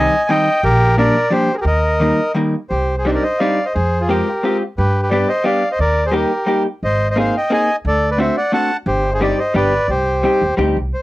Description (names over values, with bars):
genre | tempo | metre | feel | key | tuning
musette waltz | 175 BPM | 3/4 | rubato | C minor | A4 = 439 Hz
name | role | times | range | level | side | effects
bandoneon | melody | 0.0-11.0 s | F4 to A5 | -16 LUFS | equal | cassette tape
vintage hollow-body jazz guitar | accompaniment | 0.0-10.8 s | Eb3 to Ab4 | -18 LUFS | left 1 dB | cassette tape
upright bass | bass | 0.0-10.9 s | G1 to G2 | -19 LUFS | equal | none
room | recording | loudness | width
light reverb | home recording on cassette | -14 LUFS | side -18 dB against mid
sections
0.0-2.7 A section; 2.7-10.9 B section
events
none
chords
0.0 Cm; 0.6 Bb6; 1.7 Eb; 2.7 Cmadd9; 3.7 Fmadd9; 4.8 G; 5.8 Eb; 6.8 Abadd9; 7.9 D7; 8.9 Cm/G; 9.5 G; 9.9 Cmadd9